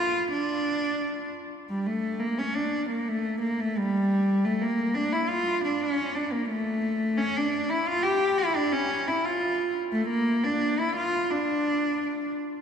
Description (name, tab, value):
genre	klezmer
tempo	87 BPM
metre	2/4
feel	straight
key	D harmonic minor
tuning	A4 = 440 Hz
part	warm cello	solo	0.0-12.3 s	G3 to G4	-24 LUFS	equal	none
room	wet church reverb, RT60 3.7 s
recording	recorded in a church or concert hall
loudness	-24 LUFS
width	side -7 dB against mid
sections	0.0-1.7 A section; 1.7-12.6 A section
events	none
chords	none